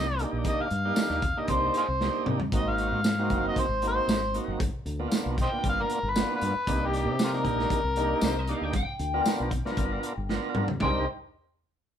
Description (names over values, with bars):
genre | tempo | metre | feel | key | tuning
straight-eighth soul blues | 116 BPM | 4/4 | straight | C minor | A4 = 442 Hz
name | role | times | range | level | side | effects
overdriven harmonica | melody | 0.0-11.1 s | F4 to G5 | -28 LUFS | left 1 dB | none
tonewheel organ | accompaniment | 0.0-11.1 s | Bb3 to A#4 | -31 LUFS | right 2 dB | slow rotary speaker, overdrive
fingered electric bass | bass | 0.0-11.1 s | Gb1 to C3 | -32 LUFS | left 1 dB | none
crunchy breakbeat drum kit | drums | 0.2-10.9 s | hi-hat, kick drum, snare drum, tambourine, toms | -30 LUFS | equal | none
electric guitar through a small old amp | second line | 8.0-11.1 s | Bb4 to G5 | -33 LUFS | left 4 dB | phaser
room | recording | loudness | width
light reverb | band playing live in one room | -25 LUFS | side -9 dB against mid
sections
0.0-10.8 A section; 10.8-12.0 B section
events
drum fill 2.0-2.5, 10.3-10.8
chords
0.0 Cm7; 2.5 Ab7; 4.6 G7#9; 6.7 Cm7; 8.7 G7#9; 10.8 Cm7